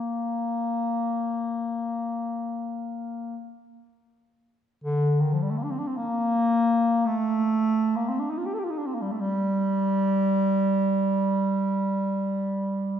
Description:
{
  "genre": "classical, free, expressive piece for unaccompanied bass clarinet",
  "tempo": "36-59 BPM",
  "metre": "4/4",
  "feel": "rubato",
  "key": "Bb major",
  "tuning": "A4 = 439 Hz",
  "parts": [
    { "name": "warm bass clarinet", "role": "solo", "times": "0.0-13.0 s", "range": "D3 to A4", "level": "-24 LUFS", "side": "equal", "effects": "none" }
  ],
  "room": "wet concert hall reverb, RT60 1.8 s",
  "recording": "recorded in a church or concert hall",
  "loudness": "-23 LUFS",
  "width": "side -9 dB against mid",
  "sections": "0.0-4.8 A section; 4.8-13.0 A section",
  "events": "none",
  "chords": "none"
}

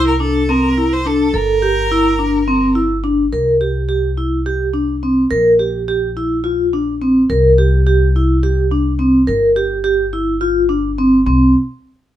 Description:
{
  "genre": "contemporary instrumental, chamber music in an uneven meter",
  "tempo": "211 BPM (eighths)",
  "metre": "7/8",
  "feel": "straight",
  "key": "C mixolydian",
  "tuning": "A4 = 439 Hz",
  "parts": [
    { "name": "clear violin", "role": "melody", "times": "0.0-2.8 s", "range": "A4 to C5", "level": "-20 LUFS", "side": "left 1 dB", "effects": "none" },
    { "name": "vibraphone with medium mallets", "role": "arpeggios", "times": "0.0-11.5 s", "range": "C4 to Bb4", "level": "-14 LUFS", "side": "equal", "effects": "none" },
    { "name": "upright bass", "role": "bass", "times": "0.0-11.5 s", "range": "G1 to C2", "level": "-19 LUFS", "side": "equal", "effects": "none" }
  ],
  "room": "moderate studio reverb, RT60 0.6 s",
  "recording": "none",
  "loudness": "-13 LUFS",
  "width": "side -12 dB against mid",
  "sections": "0.0-3.3 A section; 3.3-11.3 B section",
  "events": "none",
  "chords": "0.0 C; 1.3 Gm; 3.3 C5; 5.3 Bb5; 7.3 C5; 9.3 N.C."
}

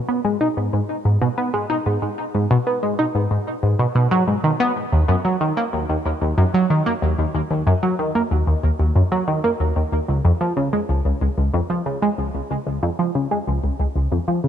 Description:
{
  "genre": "ambient",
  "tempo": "93 BPM",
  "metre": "4/4",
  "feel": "straight",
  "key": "Eb minor",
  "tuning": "A4 = 439 Hz",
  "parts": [
    { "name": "tight sequenced synth", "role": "solo", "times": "0.1-14.5 s", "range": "Db2 to Eb4", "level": "-18 LUFS", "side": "equal", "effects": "chorus, tape echo" }
  ],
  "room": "light reverb",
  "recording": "cassette tape",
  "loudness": "-18 LUFS",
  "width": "side -9 dB against mid",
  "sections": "0.0-14.5 A section",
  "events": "none",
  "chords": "none"
}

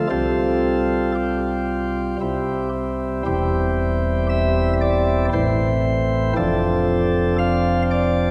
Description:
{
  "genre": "classical, chorale-style piece for pipe organ",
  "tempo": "58 BPM",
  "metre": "3/4",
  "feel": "straight",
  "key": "C major from 3.3 s",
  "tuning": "A4 = 440 Hz",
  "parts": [
    { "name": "chamber organ, sparkling flutes", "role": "solo", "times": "0.0-8.3 s", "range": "E1 to F5", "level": "-20 LUFS", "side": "equal", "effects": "none" }
  ],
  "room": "wet church reverb, RT60 3.1 s",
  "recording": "recorded in a church or concert hall",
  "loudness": "-20 LUFS",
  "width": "mono",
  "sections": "0.0-8.3 A section",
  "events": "none",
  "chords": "0.1 Csus4; 2.2 C; 3.3 C/E; 5.3 Am; 6.4 Dm7/F"
}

